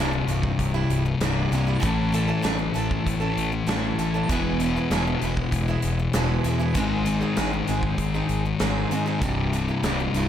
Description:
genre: quiet-loud alternative rock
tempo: 98 BPM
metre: 4/4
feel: straight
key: unclear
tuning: A4 = 441 Hz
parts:
  - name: picked steel-string acoustic guitar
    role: arpeggios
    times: 0.0-10.3 s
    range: C2 to A4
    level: -29 LUFS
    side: right 6 dB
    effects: none
  - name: thick fuzz guitar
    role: riff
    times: 0.0-10.3 s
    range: C2 to A3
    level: -24 LUFS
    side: left 4 dB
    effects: distortion
  - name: fuzz fingered electric bass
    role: bass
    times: 0.0-10.3 s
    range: C1 to Ab2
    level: -29 LUFS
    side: right 1 dB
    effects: overdrive
  - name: big rock drum kit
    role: drums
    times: 0.3-10.3 s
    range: hi-hat, kick drum, snare drum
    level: -29 LUFS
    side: right 1 dB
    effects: none
room: light reverb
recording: none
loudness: -21 LUFS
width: side -10 dB against mid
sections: 0.0-10.3 A section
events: none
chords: 0.0 C; 1.8 A; 4.3 E; 6.8 Ab; 9.2 C

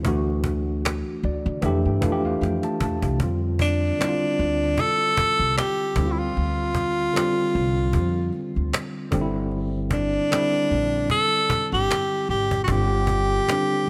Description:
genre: R&B, neo-soul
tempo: 76 BPM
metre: 4/4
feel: swing 56% on 16ths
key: unclear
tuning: A4 = 440 Hz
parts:
  - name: tine electric piano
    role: accompaniment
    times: 0.0-13.9 s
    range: D3 to A5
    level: -29 LUFS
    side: equal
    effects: overdrive
  - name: upright bass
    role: bass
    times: 0.0-13.4 s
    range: G1 to D3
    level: -28 LUFS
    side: equal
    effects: none
  - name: cajon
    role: drums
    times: 0.0-13.9 s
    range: none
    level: -29 LUFS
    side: equal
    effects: none
  - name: breathy tenor saxophone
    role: melody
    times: 3.6-13.9 s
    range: D4 to A4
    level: -25 LUFS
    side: equal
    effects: none
room: light reverb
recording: none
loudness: -23 LUFS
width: mono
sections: 0.0-3.2 A section; 3.2-13.9 B section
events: tine electric piano fill 0.8-3.2; drum fill 2.4-3.2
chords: 0.0 Dadd9; 1.6 Fmaj9; 3.2 F69; 9.1 G5

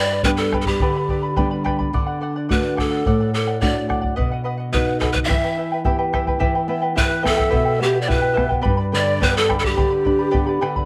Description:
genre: andean folk, Andean ensemble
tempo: 107 BPM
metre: 2/4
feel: straight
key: E minor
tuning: A4 = 440 Hz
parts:
  - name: breathy mellow pan flute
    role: melody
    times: 0.0-10.6 s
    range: G4 to E5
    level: -24 LUFS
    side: equal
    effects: none
  - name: charango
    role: accompaniment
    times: 0.0-10.9 s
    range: E4 to B5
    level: -27 LUFS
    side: equal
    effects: cassette tape
  - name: nylon-string guitar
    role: accompaniment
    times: 0.0-10.9 s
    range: G2 to G4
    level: -26 LUFS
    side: equal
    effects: cassette tape
  - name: bombo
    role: percussion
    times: 0.2-10.9 s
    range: none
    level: -25 LUFS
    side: equal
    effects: none
  - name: breathy quena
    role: second line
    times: 7.0-10.6 s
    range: G4 to E5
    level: -25 LUFS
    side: equal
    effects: cassette tape
room: light reverb, small room ambience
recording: home recording on cassette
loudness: -20 LUFS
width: mono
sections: 0.0-6.4 A section; 6.4-10.9 A section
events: none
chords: 0.0 G; 1.9 D; 4.2 B; 5.3 Em; 8.7 G

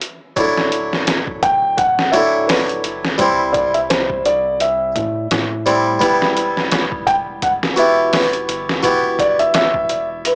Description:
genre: trip hop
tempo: 85 BPM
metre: 4/4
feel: swing 57% on 16ths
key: E minor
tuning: A4 = 441 Hz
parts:
  - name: trip hop sampler-style drum kit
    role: drums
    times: 0.0-10.3 s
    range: hi-hat, kick drum, snare drum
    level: -23 LUFS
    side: equal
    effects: none
  - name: harpsichord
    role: accompaniment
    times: 0.4-10.3 s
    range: F#3 to D5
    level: -21 LUFS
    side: equal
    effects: harmonic tremolo, tape echo
  - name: round analog bass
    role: bass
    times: 0.4-10.3 s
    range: D1 to A2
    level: -33 LUFS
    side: equal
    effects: none
  - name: felt-muted upright piano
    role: melody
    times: 1.4-10.3 s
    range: B4 to G5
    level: -19 LUFS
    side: equal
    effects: tape echo
room: light reverb, digital ambience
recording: dry, gritty hardware recording, small speaker sound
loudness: -17 LUFS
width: mono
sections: 0.0-10.3 A section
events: none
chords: 0.4 Dadd9; 3.2 C; 6.0 Emadd9

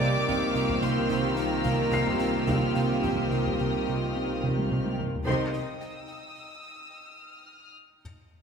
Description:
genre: cinematic, suspense film score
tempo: 109 BPM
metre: 5/4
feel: straight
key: C minor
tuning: A4 = 440 Hz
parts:
  - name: dark studio violin section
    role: melody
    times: 0.0-5.6 s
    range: G5 to D6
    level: -37 LUFS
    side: left 1 dB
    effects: none
  - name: clear clarinet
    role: second line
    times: 0.0-5.5 s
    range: G4 to D5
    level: -36 LUFS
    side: left 1 dB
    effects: none
  - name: dark studio violin section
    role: second line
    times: 0.0-5.6 s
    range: Eb4 to G4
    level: -35 LUFS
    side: left 1 dB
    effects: none
  - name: rich studio viola section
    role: accompaniment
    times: 0.0-5.6 s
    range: Eb3 to C4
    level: -31 LUFS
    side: right 1 dB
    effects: none
  - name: dark French horn section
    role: sustained chords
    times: 0.0-5.5 s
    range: Eb3 to G4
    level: -37 LUFS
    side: left 6 dB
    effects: none
  - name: pulsing gated texture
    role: sustained chords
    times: 0.0-5.6 s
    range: Eb4 to G5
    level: -39 LUFS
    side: left 1 dB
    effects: chorus, built-in reverb
  - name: round analog bass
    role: riff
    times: 0.0-5.2 s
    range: C3 to C4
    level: -32 LUFS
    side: right 2 dB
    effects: none
  - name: rich studio cello section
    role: bass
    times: 0.0-5.6 s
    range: C3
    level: -33 LUFS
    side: right 4 dB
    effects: none
  - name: warm studio double bass section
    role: bass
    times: 0.0-5.6 s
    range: C2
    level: -34 LUFS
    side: right 2 dB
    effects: none
  - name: warm studio violin section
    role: texture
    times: 0.0-7.7 s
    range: Eb6 to F6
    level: -39 LUFS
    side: left 3 dB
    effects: none
  - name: taiko ensemble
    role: drums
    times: 0.3-5.4 s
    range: none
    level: -35 LUFS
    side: left 1 dB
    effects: none
  - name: felt-muted upright piano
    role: texture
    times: 1.9-5.3 s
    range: C7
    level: -40 LUFS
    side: left 4 dB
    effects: none
room: wet scoring stage reverb, RT60 1.8 s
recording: none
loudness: -24 LUFS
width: side -6 dB against mid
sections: 0.0-5.3 A section; 5.3-8.0 B section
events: drum fill 4.6-5.3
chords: 0.0 Ebadd9/C; 5.3 Cm

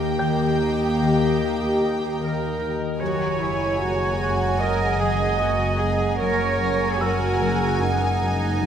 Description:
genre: cinematic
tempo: 75 BPM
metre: 4/4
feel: straight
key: unclear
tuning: A4 = 440 Hz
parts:
  - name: warm symphonic violin section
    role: melody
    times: 0.0-8.7 s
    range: G5 to G#5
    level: -31 LUFS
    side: left 2 dB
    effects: none
  - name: dark chamber viola section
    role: accompaniment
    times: 0.0-8.2 s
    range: G4 to D#5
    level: -25 LUFS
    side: right 2 dB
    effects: none
  - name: deep dark ambient pad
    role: sustained chords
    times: 0.0-8.7 s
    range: G4 to A#5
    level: -28 LUFS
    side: right 2 dB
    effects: chorus, built-in reverb
  - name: concert harp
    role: riff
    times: 0.0-8.7 s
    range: F#2 to D#3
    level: -28 LUFS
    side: left 6 dB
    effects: none
  - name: dark symphonic double bass section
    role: bass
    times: 0.0-8.7 s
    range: F#1 to D#2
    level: -29 LUFS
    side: right 2 dB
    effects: none
  - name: rich symphonic cello section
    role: bass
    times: 0.0-8.7 s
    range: A#3 to A#4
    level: -27 LUFS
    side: right 2 dB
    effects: none
  - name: organ-like drone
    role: drone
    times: 0.0-8.7 s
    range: F#1 to D#2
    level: -30 LUFS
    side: left 1 dB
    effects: ensemble chorus, built-in reverb
  - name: warm baby grand piano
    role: texture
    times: 0.0-8.7 s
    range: G5 to G6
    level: -35 LUFS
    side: left 2 dB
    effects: none
room: wet concert hall reverb, RT60 2.0 s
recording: none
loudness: -20 LUFS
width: side -8 dB against mid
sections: 0.0-8.7 A section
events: none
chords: 0.0 D#; 3.0 F#add9

